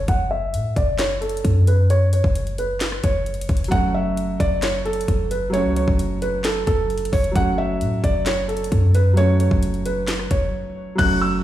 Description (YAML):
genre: hip hop, trap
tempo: 132 BPM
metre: 4/4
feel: half-time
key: F# minor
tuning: A4 = 440 Hz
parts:
  - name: felt-muted upright piano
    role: melody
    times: 0.0-11.4 s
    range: A4 to F#6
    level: -24 LUFS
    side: right 1 dB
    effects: low-pass filter, ping-pong delay
  - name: clean 808-style bass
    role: bass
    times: 0.0-11.4 s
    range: F#1 to A2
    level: -21 LUFS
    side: equal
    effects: none
  - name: trap drum kit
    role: drums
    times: 0.1-11.1 s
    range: crash cymbal, handclaps, hi-hat, kick drum, rim click, snare drum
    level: -23 LUFS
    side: equal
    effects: none
  - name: felt-muted upright piano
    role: accompaniment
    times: 3.7-11.4 s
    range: F#3 to F#4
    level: -25 LUFS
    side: right 2 dB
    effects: low-pass filter
room: little or no reverb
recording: played on a big sound system in a bare room, stone room reverb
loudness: -18 LUFS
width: side -13 dB against mid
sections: 0.0-11.0 A section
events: filter sweep 0.0-3.7; break 10.5-11.0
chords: 0.0 F#m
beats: | 0.08 0.54 0.99 1.45 | 1.90 2.35 2.81 3.26 | 3.72 4.17 4.63 5.08 | 5.54 5.99 6.45 6.90 | 7.36 7.81 8.26 8.72 | 9.17 9.63 10.08 10.54 | 10.99